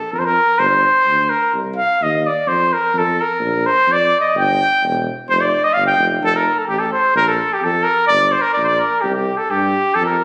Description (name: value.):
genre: balkan folk.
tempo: 128 BPM.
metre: 2/4.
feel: straight.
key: F mixolydian.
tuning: A4 = 440 Hz.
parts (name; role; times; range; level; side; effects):
warm trumpet; melody; 0.0-10.2 s; G4 to G5; -17 LUFS; equal; slapback echo.
dark tuba; bass; 0.1-10.2 s; E1 to G2; -26 LUFS; equal; none.
room: wet recital hall reverb, RT60 1.4 s.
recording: recorded on a phone in the room, studio reverb.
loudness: -16 LUFS.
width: mono.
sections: 0.0-6.2 A section; 6.2-10.2 B section.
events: trumpet solo 0.0-6.2.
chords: 0.0 Bb5; 0.6 G5; 1.5 Cm; 2.5 Fadd11; 3.4 Bb5; 4.4 Em; 5.3 Ebmaj9/F (rootless); 6.2 F; 7.2 Bb5; 8.1 Gm; 9.0 C5.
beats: 0.13 | 0.60 1.07 | 1.54 2.01 | 2.48 2.95 | 3.42 3.89 | 4.36 4.83 | 5.30 5.76 | 6.23 6.70 | 7.17 7.63 | 8.10 8.56 | 9.03 9.49 | 9.96.